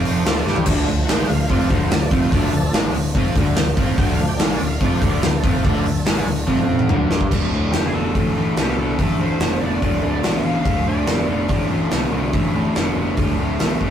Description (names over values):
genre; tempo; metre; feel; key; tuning
blues rock power trio and southern rock; 144 BPM; 4/4; straight; D minor; A4 = 438 Hz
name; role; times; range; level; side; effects
overdriven tonewheel organ; sustained chords; 0.0-6.7 s; F3 to G5; -26 LUFS; right 2 dB; slow rotary speaker, chorus vibrato
cranked stack guitar; riff; 0.0-13.9 s; D2 to G#3; -21 LUFS; equal; overdrive
fuzz picked electric bass; bass; 0.0-13.9 s; D1 to C2; -24 LUFS; equal; overdrive
big rock drum kit; drums; 0.1-13.9 s; crash cymbal, hi-hat, kick drum, snare drum, splash cymbal, toms; -20 LUFS; equal; none
lead guitar through a small cranked amp; melody; 7.7-11.7 s; G4 to F5; -27 LUFS; equal; wah, overdrive
room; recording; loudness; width
moderate studio reverb, RT60 0.6 s; rough rehearsal-room recording, warm saturation; -16 LUFS; side -9 dB against mid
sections
0.0-7.3 A section; 7.3-13.9 B section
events
tonewheel organ solo 0.0-7.3; drum fill 0.5, 6.5-7.3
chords
0.0 Dm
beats
0.25 | 0.67 1.08 1.49 1.91 | 2.32 2.73 3.15 3.56 | 3.98 4.39 4.81 5.22 | 5.64 6.05 6.47 6.88 | 7.30 7.72 8.14 8.56 | 8.98 9.40 9.82 10.24 | 10.66 11.08 11.50 11.92 | 12.34 12.76 13.18 13.60